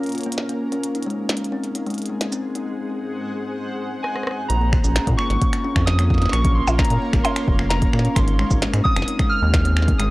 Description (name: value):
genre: IDM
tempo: 131 BPM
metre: 4/4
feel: straight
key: Bb minor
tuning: A4 = 441 Hz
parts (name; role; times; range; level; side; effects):
- granular cloud pad; sustained chords; 0.0-10.1 s; Ab3 to Gb5; -31 LUFS; equal; built-in reverb, vintage 12-bit sampler grit
- kalimba; arpeggios; 0.0-10.1 s; Ab3 to F4; -26 LUFS; left 1 dB; low-pass filter, analog delay
- glitchy drum kit; drums; 0.0-10.1 s; finger snaps, hi-hat, percussion blips, rim click, shaker, snare drum; -26 LUFS; equal; none
- warbly lo-fi synth keys; melody; 4.0-10.1 s; Ab5 to F6; -26 LUFS; right 1 dB; chorus, analog delay
- rubbery square bass; bass; 4.5-10.1 s; F1 to Bb2; -19 LUFS; equal; tube saturation
- electronic kick drum; drums; 4.7-10.0 s; none; -21 LUFS; equal; none
room: digital ambience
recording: dry, gritty hardware recording, cassette tape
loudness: -18 LUFS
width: side -20 dB against mid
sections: 0.0-4.5 A section; 4.5-10.1 B section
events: filter sweep on kalimba 0.0-4.5; drum fill 4.0-4.5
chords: 0.0 Bbm; 0.8 Ab7; 4.5 Bbm; 8.2 Ab7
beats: 0.38 | 0.84 1.29 1.75 2.21 | 2.67 3.13 3.58 4.04 | 4.50 4.96 5.42 5.87 | 6.33 6.79 7.25 7.71 | 8.16 8.62 9.08 9.54 | 10.00